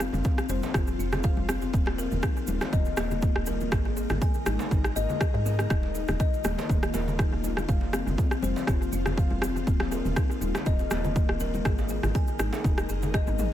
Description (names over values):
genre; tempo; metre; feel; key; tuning
afro house; 121 BPM; 4/4; swing 54% on 16ths; unclear; A4 = 440 Hz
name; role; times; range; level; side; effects
ethereal airy pad; sustained chords; 0.0-13.5 s; Eb3 to Bb4; -36 LUFS; left 1 dB; ensemble chorus, built-in reverb, sidechain pumping
buzzing kalimba; arpeggios; 0.0-13.5 s; Bb3 to Ab5; -33 LUFS; left 4 dB; vintage 12-bit sampler grit, sidechain pumping, analog delay
woody FM bass; bass; 0.0-13.5 s; Eb1 to Ab2; -31 LUFS; equal; sidechain pumping
house drum kit; drums; 0.0-13.5 s; rim click, toms; -33 LUFS; equal; overdrive, analog delay
cabasa; percussion; 0.0-13.5 s; none; -44 LUFS; right 3 dB; none
congas; percussion; 0.1-13.4 s; none; -38 LUFS; left 2 dB; analog delay
djembe; percussion; 0.1-13.5 s; none; -39 LUFS; right 2 dB; none
electronic kick drum; drums; 0.2-13.2 s; none; -25 LUFS; equal; overdrive
room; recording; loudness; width
small room ambience; echo-heavy mix; -24 LUFS; side -12 dB against mid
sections
0.0-13.5 A section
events
drum fill 13.3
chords
0.0 F5; 1.7 Eb5; 3.7 Ab5; 5.7 Eb5; 7.7 F5; 9.7 Eb5; 11.7 Ab5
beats
0.25 0.74 1.24 | 1.74 2.23 2.73 3.22 | 3.72 4.22 4.71 5.21 | 5.70 6.20 6.70 7.19 | 7.69 8.18 8.68 9.18 | 9.67 10.17 10.66 11.16 | 11.65 12.15 12.65 13.14